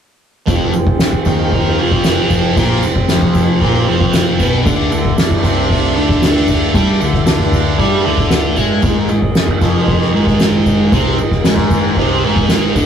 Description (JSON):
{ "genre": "psychedelic rock", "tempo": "115 BPM", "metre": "4/4", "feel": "straight", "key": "F dorian", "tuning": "A4 = 440 Hz", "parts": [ { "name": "pedal harmonium", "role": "sustained chords", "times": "0.5-12.9 s", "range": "D3 to Eb5", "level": "-23 LUFS", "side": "equal", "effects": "none" }, { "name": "thick fuzz guitar", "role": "riff", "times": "0.5-12.9 s", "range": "F2 to Ab4", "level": "-15 LUFS", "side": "equal", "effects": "distortion, phaser" }, { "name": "fingered electric bass", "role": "bass", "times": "0.5-12.9 s", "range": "F1 to Ab2", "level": "-21 LUFS", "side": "equal", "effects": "none" }, { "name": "soft-mallet drum kit", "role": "drums", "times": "0.5-12.9 s", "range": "kick drum, ride cymbal, snare drum", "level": "-14 LUFS", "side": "equal", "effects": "none" }, { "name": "tambourine", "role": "percussion", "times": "0.5-12.9 s", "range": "none", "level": "-36 LUFS", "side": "right 5 dB", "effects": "none" } ], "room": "moderate small room reverb, RT60 0.6 s", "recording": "rough rehearsal-room recording", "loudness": "-11 LUFS", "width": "side -8 dB against mid", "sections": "0.5-12.9 A section", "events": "none", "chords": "0.5 Fm; 4.7 D5; 8.8 Ab5" }